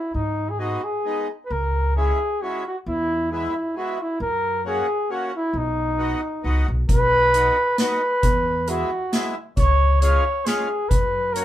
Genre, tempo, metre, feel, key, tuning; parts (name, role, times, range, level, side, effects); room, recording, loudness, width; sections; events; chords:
alpine folk, alpine dance band; 134 BPM; 3/4; swing 54% on 8ths; B major; A4 = 440 Hz
mellow flugelhorn; melody; 0.0-11.4 s; D#4 to C#5; -22 LUFS; equal
upright bass; bass; 0.1-11.4 s; B1 to G#2; -23 LUFS; equal
accordion; accompaniment; 0.6-11.4 s; G#3 to F#4; -29 LUFS; left 1 dB
street-band drum kit; drums; 6.9-11.4 s; hi-hat, kick drum, snare drum; -22 LUFS; equal
moderate small room reverb, RT60 0.5 s; band playing live in one room; -19 LUFS; side -12 dB against mid
0.0-6.9 A section; 6.9-11.4 B section
0.1 G#m; 1.5 C#m; 2.9 E; 4.2 F#; 5.5 B; 8.2 E; 9.6 C#; 10.9 F#